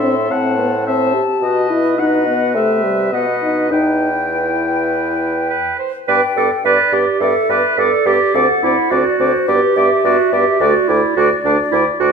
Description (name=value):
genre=quick classical-period movement for wind quintet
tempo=106 BPM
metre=4/4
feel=rubato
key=E minor, G major from 6.1 s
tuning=A4 = 438 Hz
part: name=hollow concert flute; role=melody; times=0.0-12.1 s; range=B4 to C6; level=-21 LUFS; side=left 7 dB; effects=none
part: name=warm oboe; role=second line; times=0.0-12.1 s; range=D5 to G5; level=-21 LUFS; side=left 2 dB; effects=none
part: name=clear clarinet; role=accompaniment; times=0.0-12.1 s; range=D4 to C5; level=-17 LUFS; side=right 7 dB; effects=none
part: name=mellow French horn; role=accompaniment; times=0.0-12.1 s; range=G3 to G4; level=-20 LUFS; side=left 1 dB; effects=none
part: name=clear bassoon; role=bass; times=0.0-12.1 s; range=D2 to C3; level=-20 LUFS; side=right 1 dB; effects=none
room=wet recital hall reverb, RT60 1.2 s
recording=minimal, uncompressed stereo recording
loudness=-13 LUFS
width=side -6 dB against mid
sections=0.0-6.1 A section; 6.1-12.1 B section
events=none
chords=0.3 F#dim/A; 1.4 B7; 2.6 C; 3.1 B; 3.7 Em; 6.1 G; 8.4 D7; 9.5 G; 10.6 D5